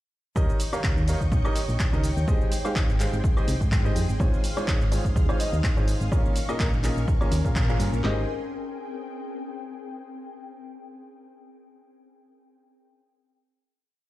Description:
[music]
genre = piano house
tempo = 125 BPM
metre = 4/4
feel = swing 55% on 16ths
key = Ab major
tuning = A4 = 440 Hz
[part]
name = string machine, violins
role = sustained chords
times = 0.4-8.3 s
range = Ab4 to G6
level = -40 LUFS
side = equal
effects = ensemble chorus, sidechain pumping
[part]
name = clear upright piano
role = riff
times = 0.4-8.2 s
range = Bb2 to F5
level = -31 LUFS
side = equal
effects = sidechain pumping, dub echo
[part]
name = solid FM bass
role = bass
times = 0.4-8.3 s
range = Ab1 to Bb2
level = -26 LUFS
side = equal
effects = sidechain pumping
[part]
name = punchy analog drum machine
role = drums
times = 0.4-8.2 s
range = handclaps, kick drum, snare drum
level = -24 LUFS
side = equal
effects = studio reverb
[part]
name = punchy analog drum machine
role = drums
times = 0.4-8.0 s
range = cabasa, handclaps, hi-hat, woodblock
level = -34 LUFS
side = equal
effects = studio reverb
[part]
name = ethereal airy pad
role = texture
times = 0.7-9.9 s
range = C4 to Ab5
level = -36 LUFS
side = left 1 dB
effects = ensemble chorus, built-in reverb, sidechain pumping
[part]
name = breathy flute-like synth lead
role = melody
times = 5.4-6.7 s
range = Bb4 to Eb5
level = -38 LUFS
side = left 1 dB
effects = chorus, dub echo
[sound]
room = little or no reverb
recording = played on a big sound system in a bare room, stone room reverb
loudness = -22 LUFS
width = side -16 dB against mid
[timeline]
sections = 0.4-8.0 drop; 8.0-10.0 final chord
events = drop 0.4-8.0; band accent 7.6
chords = 0.4 Eb7; 2.3 Abmaj7; 4.2 Dbmaj9/Ab; 6.1 Bbm7; 8.0 Abmaj7

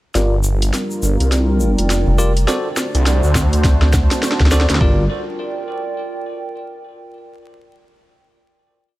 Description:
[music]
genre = glitch hop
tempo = 103 BPM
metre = 4/4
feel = swing 61% on 16ths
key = unclear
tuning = A4 = 441 Hz
[part]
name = dark analog pad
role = sustained chords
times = 0.5-5.1 s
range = G3 to C5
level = -25 LUFS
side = right 1 dB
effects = chorus, sidechain pumping
[part]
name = bell-like tine electric piano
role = stabs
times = 0.1-5.0 s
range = F4 to D5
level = -24 LUFS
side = equal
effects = fast stereo tremolo, sidechain pumping, low-pass filter, digital delay
[part]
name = egg shaker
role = percussion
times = 0.1-4.8 s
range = none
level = -30 LUFS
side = left 2 dB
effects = none
[part]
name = phased detuned saw bass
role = bass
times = 0.2-5.1 s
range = F1 to D2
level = -16 LUFS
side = equal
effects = phaser, tube saturation
[part]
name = drum and bass drum kit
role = drums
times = 0.2-4.9 s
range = hi-hat, snare drum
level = -22 LUFS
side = equal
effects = studio reverb
[part]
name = warbly tape-like pad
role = texture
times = 0.8-7.1 s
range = F4 to A5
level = -27 LUFS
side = right 2 dB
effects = chorus, built-in reverb, sidechain pumping
[part]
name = rubbery square bass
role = bass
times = 2.1-4.7 s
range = F1 to D2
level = -14 LUFS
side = equal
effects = none
[part]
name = boom bap sampler-style drum kit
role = drums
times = 3.4-5.0 s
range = kick drum, toms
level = -17 LUFS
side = equal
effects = studio reverb
[sound]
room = digital ambience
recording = vinyl crackle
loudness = -14 LUFS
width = side -17 dB against mid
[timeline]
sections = 0.1-4.8 build; 4.8-7.1 final chord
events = build-up 0.1-4.8; drum fill 0.1-4.8; filter sweep on tine electric piano 0.1-4.8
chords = 0.1 Gm7; 2.5 D7; 4.8 Gm7

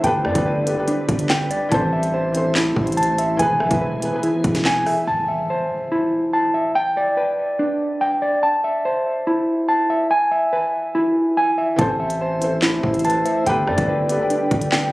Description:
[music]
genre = hip hop, drill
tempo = 143 BPM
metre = 4/4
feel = half-time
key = A minor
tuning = A4 = 440 Hz
[part]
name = felt-muted upright piano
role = accompaniment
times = 0.0-5.1, 11.8-14.9 s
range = D3 to C5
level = -25 LUFS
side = left 1 dB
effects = low-pass filter
[part]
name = glassy FM pad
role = sustained chords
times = 0.0-5.1, 12.2-14.9 s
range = E3 to C5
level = -30 LUFS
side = equal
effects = ensemble chorus, built-in reverb
[part]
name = mellow electric guitar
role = arpeggios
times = 0.0-14.9 s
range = D4 to A5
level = -19 LUFS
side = equal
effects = low-pass filter, tape echo
[part]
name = distorted 808-style bass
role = bass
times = 0.0-4.8, 11.8-14.9 s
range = E1 to G2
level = -25 LUFS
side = equal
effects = distortion
[part]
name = drill drum kit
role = drums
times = 0.0-5.0, 11.8-14.8 s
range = handclaps, hi-hat, kick drum, rim click, snare drum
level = -23 LUFS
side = equal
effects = none
[part]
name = impact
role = sound effects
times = 5.1-6.8 s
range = none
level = -36 LUFS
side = left 1 dB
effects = none
[part]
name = hollow clarinet-like synth lead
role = second line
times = 13.1-14.9 s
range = B4 to G5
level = -28 LUFS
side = left 2 dB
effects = chorus, tape echo
[sound]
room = light reverb, digital ambience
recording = recorded on a phone in the room, club reverb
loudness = -17 LUFS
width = side -19 dB against mid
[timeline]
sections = 0.0-5.1 A section; 5.1-14.9 B section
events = impact 5.1-6.8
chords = 0.0 G; 1.7 Am; 3.4 E; 5.1 Am; 6.8 G; 8.4 Am; 10.1 E; 11.8 Am; 13.5 G

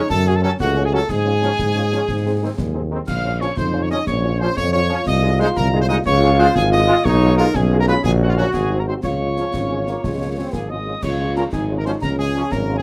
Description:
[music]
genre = military-style march for wind band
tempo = 121 BPM (dotted quarters)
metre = 6/8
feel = straight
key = Db major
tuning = A4 = 441 Hz
[part]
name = mellow trumpet section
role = melody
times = 0.0-12.8 s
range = F4 to F5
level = -28 LUFS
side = equal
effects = none
[part]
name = warm euphonium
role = second line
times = 0.0-12.8 s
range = Ab3 to Gb4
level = -25 LUFS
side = equal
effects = none
[part]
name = bright piccolo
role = second line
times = 0.1-12.8 s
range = F5 to F6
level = -29 LUFS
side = equal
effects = none
[part]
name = warm tuba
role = bass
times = 0.1-12.8 s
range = Ab1 to Ab2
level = -22 LUFS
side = equal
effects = none
[part]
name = concert snare drum, concert bass drum and clash cymbals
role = drums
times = 0.1-12.7 s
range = none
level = -31 LUFS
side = equal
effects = none
[part]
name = mellow French horn section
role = accompaniment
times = 0.3-12.7 s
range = Ab3 to Ab4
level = -29 LUFS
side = equal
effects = none
[part]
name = dark trombone section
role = sustained chords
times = 0.4-12.4 s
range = Eb3 to F4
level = -26 LUFS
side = equal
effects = none
[sound]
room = light reverb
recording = close, detailed microphones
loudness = -19 LUFS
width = mono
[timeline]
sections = 0.0-11.0 A section; 11.0-12.8 A section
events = none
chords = 0.1 Gbm; 1.1 Db/Ab; 2.1 Ab; 3.1 Bbm; 5.1 Ab/C; 6.1 Db; 7.1 Db7/Cb; 8.0 Gb/Bb; 8.5 Ab7; 9.0 Db

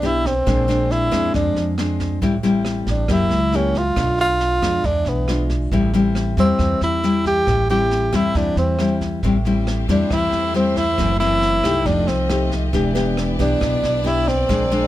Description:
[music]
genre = bossa nova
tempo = 137 BPM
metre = 4/4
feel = straight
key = A minor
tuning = A4 = 444 Hz
[part]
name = breathy tenor saxophone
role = melody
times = 0.0-14.9 s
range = B3 to G4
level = -20 LUFS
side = right 1 dB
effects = none
[part]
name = nylon-string guitar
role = accompaniment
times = 0.0-14.9 s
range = F#2 to G4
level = -21 LUFS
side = left 3 dB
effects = none
[part]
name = upright bass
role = bass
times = 0.0-14.9 s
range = E1 to F2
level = -22 LUFS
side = right 1 dB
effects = none
[part]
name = jazz brush drum kit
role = drums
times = 0.0-14.8 s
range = kick drum, rim click, snare drum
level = -28 LUFS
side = right 1 dB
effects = none
[part]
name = warm studio string section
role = sustained chords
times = 9.2-14.9 s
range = A3 to Eb5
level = -29 LUFS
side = left 1 dB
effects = none
[sound]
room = little or no reverb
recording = close, detailed microphones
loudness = -16 LUFS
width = side -14 dB against mid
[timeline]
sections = 0.0-9.2 A section; 9.2-14.9 A section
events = none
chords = 0.5 Bb9; 2.2 Am7; 3.1 F#7b9; 4.0 Bm7b5; 4.8 E7b9; 5.7 Am7; 11.0 F#m7b5; 11.9 F9; 12.7 Em7

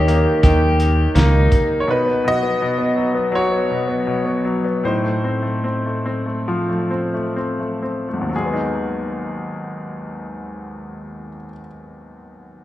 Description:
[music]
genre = acoustic folk-pop ballad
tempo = 60-84 BPM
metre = 4/4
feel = straight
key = unclear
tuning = A4 = 441 Hz
[part]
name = bright grand piano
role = melody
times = 0.0-12.6 s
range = G#1 to D#5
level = -19 LUFS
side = left 1 dB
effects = none
[part]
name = pedal steel guitar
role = second line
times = 0.0-1.8 s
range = D#4 to G4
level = -24 LUFS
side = left 4 dB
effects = none
[part]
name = felt-muted upright piano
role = arpeggios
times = 0.0-1.5 s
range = C#5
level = -31 LUFS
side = equal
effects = none
[part]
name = mellow fretless electric bass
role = bass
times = 0.0-1.5 s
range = C#2 to D#2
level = -16 LUFS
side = equal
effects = none
[part]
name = cloth-damped thuddy drum kit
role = drums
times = 0.1-1.7 s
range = hi-hat, kick drum, snare drum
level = -20 LUFS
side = equal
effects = none
[sound]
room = wet recital hall reverb, RT60 1.6 s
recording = heard from further back in the room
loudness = -17 LUFS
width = side -14 dB against mid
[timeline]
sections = 0.0-1.9 A section; 1.9-8.3 B section; 8.3-12.3 C section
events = slowing down 1.9-8.3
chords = 0.0 D#; 1.9 B; 4.8 F7/A; 8.3 G#m7

